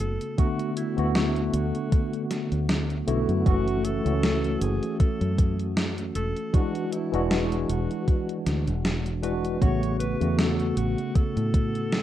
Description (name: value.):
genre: vaporwave.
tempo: 78 BPM.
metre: 4/4.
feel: swing 55% on 16ths.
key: A major.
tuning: A4 = 440 Hz.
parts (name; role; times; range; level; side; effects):
warm alto saxophone; melody; 0.0-12.0 s; E4 to C#5; -36 LUFS; equal; tape echo.
tine electric piano; accompaniment; 0.0-12.0 s; C#3 to F#4; -27 LUFS; equal; medium stereo tremolo, wide subtle chorus, vintage 12-bit sampler grit, tape echo.
fingered electric bass; bass; 0.0-12.0 s; E1 to A2; -27 LUFS; equal; tube saturation.
gated 80s digital drum machine; drums; 0.0-12.0 s; hi-hat, snare drum; -28 LUFS; equal; gated reverb, gated reverb snare.
electronic kick drum; drums; 0.4-11.7 s; none; -22 LUFS; equal; none.
room: digital ambience.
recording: rough home demo mix, cassette tape.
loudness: -23 LUFS.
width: side -12 dB against mid.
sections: 0.0-12.0 A section.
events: none.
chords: 0.4 D6; 3.5 F#m7; 6.5 E9; 9.6 A69.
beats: | 0.38 1.15 1.92 2.69 | 3.46 4.23 5.00 5.77 | 6.54 7.31 8.08 8.85 | 9.62 10.38 11.15 11.92.